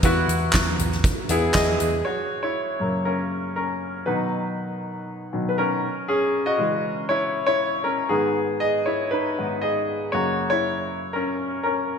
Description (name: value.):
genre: piano-driven pop.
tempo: 119 BPM.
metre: 4/4.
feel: straight.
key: F# mixolydian.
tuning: A4 = 439 Hz.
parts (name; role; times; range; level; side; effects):
clear concert grand piano; accompaniment; 0.0-12.0 s; F#2 to E5; -22 LUFS; left 1 dB; wide subtle chorus.
vintage muted picked electric bass; bass; 0.0-2.0 s; E2; -25 LUFS; right 1 dB; none.
soft-mallet drum kit; drums; 0.0-1.9 s; handclaps, hi-hat, kick drum, snare drum, toms; -23 LUFS; right 1 dB; gated reverb.
room: moderate lush hall reverb, RT60 2.1 s.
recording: bright 1980s-style digital production.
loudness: -21 LUFS.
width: side -6 dB against mid.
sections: 0.0-2.0 A section; 2.0-12.0 B section.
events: grand piano solo 2.0-12.0.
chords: 0.0 E; 2.0 F#; 4.1 B; 5.8 C#m; 8.1 G#m; 10.1 F#.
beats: | 0.03 0.54 1.04 1.54 | 2.05 2.55 3.06 3.56 | 4.07 4.57 5.08 5.58 | 6.09 6.59 7.10 7.60 | 8.11 8.61 9.12 9.62 | 10.13 10.64 11.14 11.65.